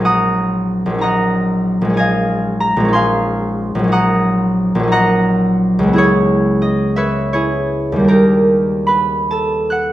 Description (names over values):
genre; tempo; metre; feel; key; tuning
classical, solo harp piece; 48-64 BPM (dotted quarters); 6/8; rubato; unclear; A4 = 440 Hz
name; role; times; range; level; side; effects
concert harp; solo; 0.0-9.9 s; A#1 to F#6; -13 LUFS; equal; none
room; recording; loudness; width
moderate recital hall reverb, RT60 1.4 s; minimal, uncompressed stereo recording; -13 LUFS; side -14 dB against mid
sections
0.0-9.9 A section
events
none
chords
0.0 D#m7/A#; 2.0 Bbm11; 3.9 D#m7/A#; 5.9 C#m7; 8.1 D#maj7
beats
| 0.05 1.02 | 1.98 2.95 | 3.93 4.92 | 5.95 6.98 | 8.09 9.29